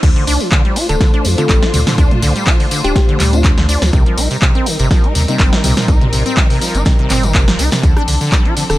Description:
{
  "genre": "acid house",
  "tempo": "123 BPM",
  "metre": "4/4",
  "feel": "swing 54% on 16ths",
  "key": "D phrygian",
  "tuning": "A4 = 440 Hz",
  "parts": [
    { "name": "rich symphonic string section", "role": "sustained chords", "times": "0.0-8.8 s", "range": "F3 to C5", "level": "-22 LUFS", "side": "equal", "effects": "sidechain pumping" },
    { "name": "acid bass, saw", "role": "riff", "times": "0.0-8.8 s", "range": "C3 to F4", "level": "-19 LUFS", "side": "equal", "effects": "tube saturation, wide subtle chorus, cassette tape, sidechain pumping, tape echo" },
    { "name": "warm sub bass", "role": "bass", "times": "0.0-8.8 s", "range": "D1 to F2", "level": "-16 LUFS", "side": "equal", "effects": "tube saturation, sidechain pumping" },
    { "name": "electronic kick drum", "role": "drums", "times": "0.0-8.4 s", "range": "none", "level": "-13 LUFS", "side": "equal", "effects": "studio reverb" },
    { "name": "punchy analog drum machine", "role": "drums", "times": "0.0-8.8 s", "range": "crash cymbal, handclaps, hi-hat, rim click, snare drum, toms", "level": "-18 LUFS", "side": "right 1 dB", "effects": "studio reverb" },
    { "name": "tambourine", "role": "percussion", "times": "0.0-8.8 s", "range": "none", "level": "-25 LUFS", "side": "left 4 dB", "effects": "none" },
    { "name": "thumb-piano-like synth pluck", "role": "melody", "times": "0.9-3.0, 8.7-8.8 s", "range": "G4 to A4", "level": "-22 LUFS", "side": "left 3 dB", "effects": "chorus, tape echo" },
    { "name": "deep mellow chord stab", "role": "stabs", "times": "1.4-5.4 s", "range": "G3 to F4", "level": "-24 LUFS", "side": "left 3 dB", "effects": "chorus, tape echo" }
  ],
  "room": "little or no reverb",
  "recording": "none",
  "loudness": "-10 LUFS",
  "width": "side -16 dB against mid",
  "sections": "0.0-8.8 A section",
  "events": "band accent 0.0; drop 0.0-8.8",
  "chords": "0.0 Dm7; 3.9 Cm7; 7.8 Dm7"
}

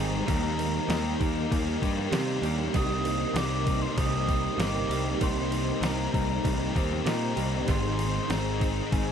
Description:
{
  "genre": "rock, shoegaze and dream pop",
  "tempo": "97 BPM",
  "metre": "4/4",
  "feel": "straight",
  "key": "C minor",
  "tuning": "A4 = 440 Hz",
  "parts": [
    { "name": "breathy mellow concert flute", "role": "melody", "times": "0.0-9.1 s", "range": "Ab5 to Eb6", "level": "-35 LUFS", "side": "left 1 dB", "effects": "analog delay" },
    { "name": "ethereal airy pad", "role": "sustained chords", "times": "0.1-9.1 s", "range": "Eb3 to Eb5", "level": "-38 LUFS", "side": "left 1 dB", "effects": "ensemble chorus, built-in reverb, phaser" },
    { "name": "picked twelve-string acoustic guitar", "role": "arpeggios", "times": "0.0-9.1 s", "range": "Eb3 to G4", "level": "-38 LUFS", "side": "right 13 dB", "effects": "lush chorus, analog delay" },
    { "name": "biting overdriven guitar", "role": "riff", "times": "0.0-9.1 s", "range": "Ab2 to Ab4", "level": "-32 LUFS", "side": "left 12 dB", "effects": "ensemble chorus" },
    { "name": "direct-recorded clean electric guitar", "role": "riff", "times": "0.0-9.1 s", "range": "Ab2 to Eb4", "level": "-33 LUFS", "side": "right 13 dB", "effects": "reverse reverb" },
    { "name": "modern bright picked electric bass", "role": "bass", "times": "0.0-9.1 s", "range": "G1 to C3", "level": "-31 LUFS", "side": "equal", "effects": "none" },
    { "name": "detuned 8-bit digital drum machine", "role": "drums", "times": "0.3-9.1 s", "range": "crash cymbal, kick drum, snare drum", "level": "-31 LUFS", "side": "equal", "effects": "none" }
  ],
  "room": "little or no reverb",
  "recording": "none",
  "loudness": "-25 LUFS",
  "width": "side -8 dB against mid",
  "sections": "0.0-9.1 A section",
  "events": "none",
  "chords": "0.3 Ebmaj7; 2.7 Cm7; 7.7 Abmaj7"
}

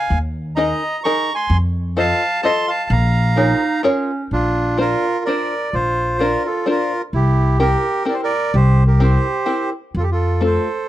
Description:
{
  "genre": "musette waltz",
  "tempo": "128 BPM",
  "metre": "3/4",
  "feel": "swing 53% on 8ths, rubato",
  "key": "Bb minor, Bb major from 4.3 s",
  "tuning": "A4 = 439 Hz",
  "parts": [
    { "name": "bandoneon", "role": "melody", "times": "0.0-10.9 s", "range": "D4 to Db6", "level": "-19 LUFS", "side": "right 2 dB", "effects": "none" },
    { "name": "upright bass", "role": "bass", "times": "0.1-10.6 s", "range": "Bb1 to F2", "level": "-17 LUFS", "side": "equal", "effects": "none" },
    { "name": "open-back banjo", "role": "accompaniment", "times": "0.6-10.7 s", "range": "A3 to Eb5", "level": "-20 LUFS", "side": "left 2 dB", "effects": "none" },
    { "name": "warm clarinet", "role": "second line", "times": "3.4-4.3 s", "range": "Db4 to Eb4", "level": "-20 LUFS", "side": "right 4 dB", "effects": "none" }
  ],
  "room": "small room ambience",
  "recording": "dry, close 1970s-style studio recording",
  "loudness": "-15 LUFS",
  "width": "side -14 dB against mid",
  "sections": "0.0-4.3 A section; 4.3-10.9 B section",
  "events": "none",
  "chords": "0.1 Ebsus4; 1.5 F7; 2.9 Bbm7; 4.3 Bbadd9; 7.1 C7; 9.9 F"
}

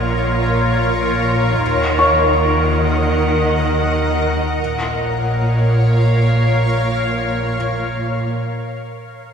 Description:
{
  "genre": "cinematic",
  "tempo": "free time",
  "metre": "none",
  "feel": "none",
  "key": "Bb minor",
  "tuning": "A4 = 440 Hz",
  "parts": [
    { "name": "shimmering ambient pad", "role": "sustained chords", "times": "0.0-8.3 s", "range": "F4 to Gb5", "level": "-19 LUFS", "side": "left 1 dB", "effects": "chorus, built-in reverb" },
    { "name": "rich studio double bass section", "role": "bass", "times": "0.0-8.3 s", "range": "Bb1 to Eb2", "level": "-19 LUFS", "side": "right 1 dB", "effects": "none" },
    { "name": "warm symphonic cello section", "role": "bass", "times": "0.0-8.3 s", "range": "Bb2 to Eb3", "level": "-22 LUFS", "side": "right 1 dB", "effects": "none" },
    { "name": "felt-muted upright piano", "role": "texture", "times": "0.0-4.6 s", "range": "Db5 to Db6", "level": "-20 LUFS", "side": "left 1 dB", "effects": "none" }
  ],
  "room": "wet recital hall reverb, RT60 1.4 s",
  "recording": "recorded in a church or concert hall",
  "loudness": "-14 LUFS",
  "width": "side -7 dB against mid",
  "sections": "0.0-4.6 A section; 4.6-7.5 B section",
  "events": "none",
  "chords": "0.0 Bbm; 1.6 Ebm; 4.6 Bbm"
}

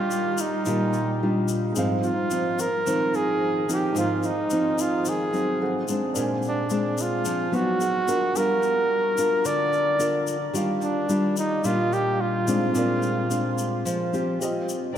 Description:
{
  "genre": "bossa nova",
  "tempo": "109 BPM",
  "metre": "4/4",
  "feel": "straight",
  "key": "Eb major",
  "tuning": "A4 = 440 Hz",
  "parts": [
    { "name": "mellow flugelhorn", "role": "melody", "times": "0.0-14.4 s", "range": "D4 to D5", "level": "-25 LUFS", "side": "right 2 dB", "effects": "none" },
    { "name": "nylon-string guitar", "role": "accompaniment", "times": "0.0-15.0 s", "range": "Ab2 to Bb4", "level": "-25 LUFS", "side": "left 1 dB", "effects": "none" },
    { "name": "warm baby grand piano", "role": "accompaniment", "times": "0.0-15.0 s", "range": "C4 to Ab5", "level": "-34 LUFS", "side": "right 3 dB", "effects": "none" },
    { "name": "tube shaker", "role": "percussion", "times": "0.1-15.0 s", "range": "none", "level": "-37 LUFS", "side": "left 8 dB", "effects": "none" }
  ],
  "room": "wet cathedral reverb, RT60 7.1 s",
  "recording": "in a vast, echoing space",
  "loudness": "-22 LUFS",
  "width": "side -9 dB against mid",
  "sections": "0.0-15.0 A section",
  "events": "none",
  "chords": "0.0 Ebmaj9; 1.8 Ab6; 5.6 Adim7; 6.2 Bb9; 7.8 Abm7; 8.4 Gm7; 10.6 Ebmaj9; 12.8 Bb9; 14.4 Eb69"
}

